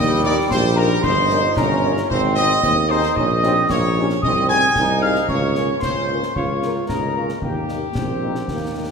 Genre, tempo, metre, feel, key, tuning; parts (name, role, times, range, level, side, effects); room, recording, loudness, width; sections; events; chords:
military-style march for wind band; 113 BPM; 2/4; straight; A4 = 439 Hz
bright trumpet section; melody; 0.0-8.9 s; G4 to Ab5; -24 LUFS; right 1 dB
mellow wooden piccolo; second line; 0.0-8.9 s; G5 to Ab6; -22 LUFS; left 1 dB
bright trombone section; sustained chords; 0.0-8.9 s; G3 to F4; -25 LUFS; right 2 dB
warm tuba; bass; 0.0-8.9 s; G1 to Eb2; -21 LUFS; right 1 dB
warm French horn section; accompaniment; 0.2-8.9 s; Bb3 to Bb4; -28 LUFS; left 3 dB
concert snare drum, concert bass drum and clash cymbals; drums; 0.5-8.9 s; -27 LUFS; left 1 dB
wet scoring stage reverb, RT60 1.6 s; minimal, uncompressed stereo recording; -16 LUFS; side -5 dB against mid
0.0-8.9 A section
0.0 Eb; 1.0 Eb7/G; 2.1 Ab; 3.2 Eb7/Bb; 4.2 Ab/C; 5.3 Bbm/Db; 7.4 Eb